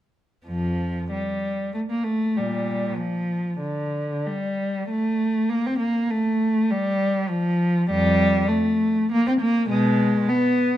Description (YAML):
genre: classical, baroque-style suite movement for unaccompanied cello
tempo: 99 BPM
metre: 3/4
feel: rubato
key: F major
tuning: A4 = 441 Hz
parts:
  - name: warm cello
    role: solo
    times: 0.5-10.8 s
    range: F2 to C4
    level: -20 LUFS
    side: equal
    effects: none
room: moderate recital hall reverb, RT60 1.7 s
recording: close, detailed microphones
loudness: -20 LUFS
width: side -12 dB against mid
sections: 0.5-10.8 A section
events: none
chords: none